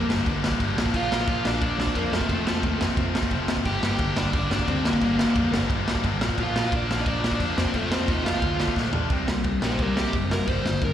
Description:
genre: punk rock.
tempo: 176 BPM.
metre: 4/4.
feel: straight.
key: unclear.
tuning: A4 = 440 Hz.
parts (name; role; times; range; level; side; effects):
dark smooth lead guitar; melody; 0.0-10.9 s; A3 to G5; -28 LUFS; equal; overdrive, slapback echo.
raw garage guitar; riff; 0.0-10.9 s; F2 to D4; -32 LUFS; right 10 dB; overdrive, slapback echo.
tight distorted guitar; riff; 0.0-10.9 s; F2 to D4; -30 LUFS; left 11 dB; distortion, slapback echo.
overdriven picked electric bass; bass; 0.0-10.9 s; F1 to F2; -29 LUFS; equal; none.
raw garage drum kit; drums; 0.1-10.9 s; crash cymbal, kick drum, snare drum, toms; -26 LUFS; equal; none.
room: studio reverb.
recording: live gig heard through the venue's PA, recital hall reverb.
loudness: -22 LUFS.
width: side -10 dB against mid.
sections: 0.0-9.1 A section; 9.1-10.9 B section.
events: drum fill 8.8-9.1; lead electric guitar solo 9.1-10.9.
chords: 0.0 Gm; 0.8 Bb; 2.1 F; 3.7 Gm; 6.2 Bb; 7.6 F; 8.4 Dm; 9.1 C5.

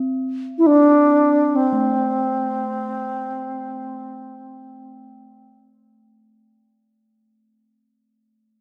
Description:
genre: world meditative, free-time meditation music.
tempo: free time.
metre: none.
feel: none.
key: unclear.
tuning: A4 = 440 Hz.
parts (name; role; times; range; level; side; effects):
bronze singing bowl; texture; 0.0-7.7 s; A3 to C4; -31 LUFS; equal; none.
mellow reedy alto flute; melody; 0.6-5.6 s; C4 to E4; -19 LUFS; equal; none.
room: wet scoring stage reverb, RT60 1.9 s, studio reverb.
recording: cassette tape.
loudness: -19 LUFS.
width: mono.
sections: 0.0-7.2 A section.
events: fade-out 0.0-7.2.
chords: none.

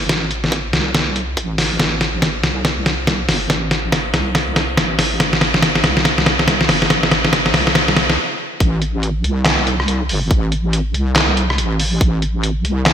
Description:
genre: deep dubstep.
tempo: 141 BPM.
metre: 4/4.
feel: swing 62% on 16ths, half-time.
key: A minor.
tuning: A4 = 436 Hz.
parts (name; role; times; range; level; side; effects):
wobble bass; bass; 0.0-12.9 s; G1 to C2; -20 LUFS; equal; chorus.
electronic kick drum; drums; 0.1-12.1 s; none; -18 LUFS; equal; high-pass filter on kick, studio reverb.
trip hop sampler-style drum kit; drums; 0.1-12.9 s; handclaps, hi-hat, rim click, snare drum; -15 LUFS; equal; studio reverb, gated reverb.
room: moderate plate reverb, RT60 2.3 s.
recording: bright 1980s-style digital production.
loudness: -14 LUFS.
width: side -9 dB against mid.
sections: 0.0-8.6 A section; 8.6-12.9 B section.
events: build-up 0.0-8.6; drum fill 0.0-8.2; stop 8.2-8.6; drop 8.6-12.9.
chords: none.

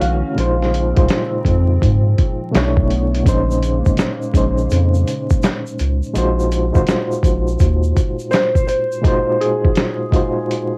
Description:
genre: lo-fi hip hop.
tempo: 83 BPM.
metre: 4/4.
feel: swing 65% on 16ths.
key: unclear.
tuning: A4 = 440 Hz.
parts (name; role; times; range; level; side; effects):
felt-muted upright piano; melody; 0.0-1.1, 8.3-10.8 s; Ab4 to F5; -24 LUFS; equal; low-pass filter, cassette tape.
overdriven reed electric piano; accompaniment; 0.0-10.8 s; Bb2 to C#5; -22 LUFS; equal; fast tremolo, low-pass filter, cassette tape.
hollow soft pad; sustained chords; 0.0-6.1 s; Db3 to F#4; -30 LUFS; equal; ensemble chorus, low-pass filter, cassette tape.
round analog bass; bass; 0.0-7.9 s; Ab1 to Ab2; -19 LUFS; equal; tube saturation.
dusty soul sampler-style drum kit; drums; 0.0-10.7 s; handclaps, hi-hat, kick drum, snare drum; -19 LUFS; equal; cassette tape.
tube shaker; percussion; 3.3-9.0 s; none; -43 LUFS; equal; none.
room: light reverb.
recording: home recording on cassette, vinyl crackle.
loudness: -17 LUFS.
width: mono.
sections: 0.0-10.8 A section.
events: none.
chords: 0.4 Dbmaj9/Bb; 2.5 Bm11; 3.3 Bbm11; 6.2 Ab13; 9.0 Ab13/Bb.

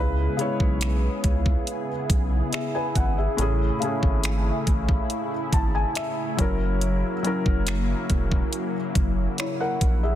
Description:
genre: contemporary R&B.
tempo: 70 BPM.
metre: 4/4.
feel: straight.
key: C# minor.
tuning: A4 = 440 Hz.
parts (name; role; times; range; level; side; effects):
felt-muted upright piano; accompaniment; 0.0-10.2 s; A2 to A5; -28 LUFS; left 2 dB; none.
lush unison pad; sustained chords; 0.0-10.2 s; C#3 to G#4; -30 LUFS; equal; chorus, phaser.
saturated sub bass; bass; 0.0-10.1 s; E1 to C#2; -25 LUFS; equal; none.
smooth R&B drum kit; drums; 0.4-10.0 s; finger snaps, hi-hat, kick drum; -24 LUFS; equal; soft clipping on snare.
room: little or no reverb.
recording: dense, heavily limited modern master.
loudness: -22 LUFS.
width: side -12 dB against mid.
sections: 0.0-10.2 A section.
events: felt piano fill 5.1-6.8.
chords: 0.0 C#m7; 3.4 Amaj7; 6.4 F#7.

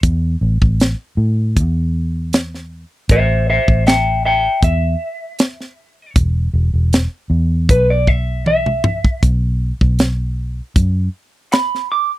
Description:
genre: straight-eighth soul blues.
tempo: 78 BPM.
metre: 4/4.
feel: straight.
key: unclear.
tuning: A4 = 441 Hz.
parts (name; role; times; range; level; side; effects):
vintage muted fingered electric bass; bass; 0.0-11.1 s; E1 to A2; -16 LUFS; equal; none.
tight funk drum kit; drums; 0.0-11.8 s; hi-hat, kick drum, snare drum, toms; -14 LUFS; equal; none.
electric guitar through a small old amp; melody; 3.1-12.1 s; B4 to D6; -17 LUFS; equal; none.
room: little or no reverb.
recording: dry, close 1970s-style studio recording.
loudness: -14 LUFS.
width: side -16 dB against mid.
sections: 0.0-12.2 A section.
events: drum fill 8.4-9.2.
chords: 0.0 A5; 6.2 E5; 9.2 B5.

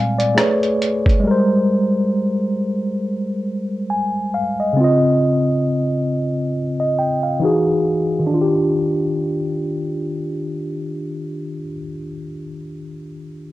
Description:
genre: lo-fi hip hop.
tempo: 68 BPM.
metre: 4/4.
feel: swing 57% on 16ths.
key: Eb major.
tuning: A4 = 440 Hz.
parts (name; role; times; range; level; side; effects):
bright tine electric piano; accompaniment; 0.0-13.5 s; Bb2 to Ab5; -18 LUFS; equal; medium stereo tremolo, cassette tape, low-pass filter.
lo-fi sampler-style drum kit; drums; 0.2-1.3 s; hi-hat, kick drum, rim click; -18 LUFS; equal; none.
room: wet small room reverb, RT60 0.6 s.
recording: cassette tape.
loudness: -17 LUFS.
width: side -16 dB against mid.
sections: 0.0-8.3 A section; 8.3-11.8 B section.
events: filter sweep on tine electric piano 0.0-8.3.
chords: 0.4 Amaj9; 1.2 Abmaj9; 4.8 Dbmaj9; 7.4 Emaj9; 8.3 Ebmaj9.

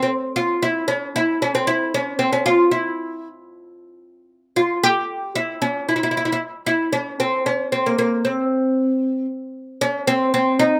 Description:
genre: Persian modal ensemble.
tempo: 76 BPM (dotted quarters).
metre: 6/8.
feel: straight.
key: unclear.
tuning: A4 = 440 Hz.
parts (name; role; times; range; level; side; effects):
oud; solo; 0.0-10.8 s; Bb3 to G4; -20 LUFS; equal; slapback echo.
room: little or no reverb.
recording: recorded outdoors, with no room sound.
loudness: -21 LUFS.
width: mono.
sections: 0.0-9.8 A section.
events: none.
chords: none.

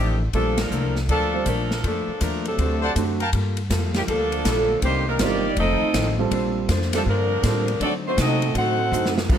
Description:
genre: jazz, big band swing.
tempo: 161 BPM.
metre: 4/4.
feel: swing 65% on 8ths.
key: Bb major, G minor from 3.3 s.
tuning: A4 = 440 Hz.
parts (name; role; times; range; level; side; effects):
clear saxophone section; melody; 0.0-9.2 s; Eb3 to F#5; -25 LUFS; left 2 dB; none.
vintage hollow-body jazz guitar; accompaniment; 0.0-9.4 s; F2 to C5; -30 LUFS; left 5 dB; none.
clear trumpet section; stabs; 0.0-3.3 s; A4 to A5; -27 LUFS; equal; none.
upright bass; bass; 0.0-9.4 s; F1 to D3; -25 LUFS; equal; none.
warm grand piano; accompaniment; 0.3-9.4 s; D3 to C5; -27 LUFS; right 7 dB; none.
swinging big-band drum kit; drums; 0.3-9.4 s; crash cymbal, hi-hat, kick drum, ride cymbal, snare drum; -27 LUFS; equal; none.
warm trombone section; second line; 2.4-9.2 s; Bb2 to Bb4; -26 LUFS; right 5 dB; none.
room: light reverb.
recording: close, detailed microphones.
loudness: -20 LUFS.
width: side -9 dB against mid.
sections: 0.0-3.3 A section; 3.3-9.4 B section.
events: band accent 0.5; drum fill 8.9-9.3.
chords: 0.3 Bbmaj7; 2.6 D7; 3.3 Gm9; 4.8 Cm9; 5.6 F7; 6.3 Bbmaj9; 7.8 D7b9.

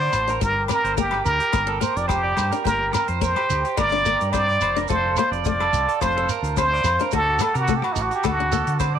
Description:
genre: highlife guitar band.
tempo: 107 BPM.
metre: 4/4.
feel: swing 53% on 16ths.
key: G minor.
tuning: A4 = 441 Hz.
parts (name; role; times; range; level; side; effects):
trumpet with plunger mute; melody; 0.0-8.8 s; Eb4 to D5; -22 LUFS; equal; tape echo.
picked steel-string acoustic guitar; accompaniment; 0.0-9.0 s; A3 to D4; -29 LUFS; left 14 dB; none.
mellow accordion; sustained chords; 0.0-9.0 s; F5 to D6; -33 LUFS; right 5 dB; none.
electric guitar at the edge of break-up; arpeggios; 0.0-9.0 s; F#4 to D5; -28 LUFS; right 11 dB; lush chorus, tape echo.
fingered electric bass; bass; 0.0-9.0 s; F1 to D3; -27 LUFS; equal; none.
warm soul drum kit; drums; 0.1-8.9 s; hi-hat, kick drum, rim click; -31 LUFS; left 2 dB; none.
agogo bells; percussion; 0.1-9.0 s; none; -33 LUFS; left 14 dB; none.
shekere; percussion; 0.1-8.9 s; none; -30 LUFS; right 4 dB; none.
room: light reverb, small room ambience.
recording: 1960s-style stereo with parts hard left and right.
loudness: -19 LUFS.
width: side -9 dB against mid.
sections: 0.0-9.0 A section.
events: none.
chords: 0.4 Gm; 4.9 F; 7.1 D.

